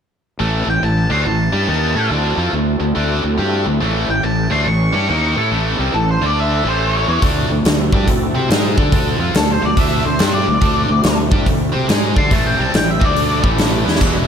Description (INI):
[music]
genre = blues rock power trio and southern rock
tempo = 141 BPM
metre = 4/4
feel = swing 65% on 8ths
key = unclear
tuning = A4 = 440 Hz
[part]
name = tonewheel organ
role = sustained chords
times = 0.4-14.3 s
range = A3 to D5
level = -27 LUFS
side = right 3 dB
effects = slow rotary speaker, overdrive, chorus vibrato
[part]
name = tight distorted guitar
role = riff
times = 0.4-14.3 s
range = E2 to D5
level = -19 LUFS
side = equal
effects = distortion, slapback echo
[part]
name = fuzz fingered electric bass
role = bass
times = 0.4-14.3 s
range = E1 to D3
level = -20 LUFS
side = equal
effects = overdrive
[part]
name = octave-fuzz lead guitar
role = melody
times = 0.7-13.4 s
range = A4 to C#6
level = -20 LUFS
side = left 1 dB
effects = distortion, slapback echo
[part]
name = big rock drum kit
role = drums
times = 7.2-14.1 s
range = hi-hat, kick drum, snare drum, splash cymbal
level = -16 LUFS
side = equal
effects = none
[sound]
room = moderate lush hall reverb, RT60 1.6 s, small room ambience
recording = big arena sound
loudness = -14 LUFS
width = side -7 dB against mid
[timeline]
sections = 0.4-14.3 A section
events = drum fill 13.8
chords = 0.4 A7; 2.1 D7; 3.8 A7; 6.2 D5; 6.6 A7; 7.2 D7; 12.3 A7; 13.0 D5; 13.4 A7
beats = | 0.40 0.83 1.25 1.68 | 2.10 2.53 2.96 3.38 | 3.81 4.24 4.66 5.09 | 5.51 5.94 6.37 6.79 | 7.22 7.64 8.07 8.49 | 8.92 9.35 9.77 10.20 | 10.62 11.04 11.47 11.89 | 12.32 12.74 13.16 13.59 | 14.01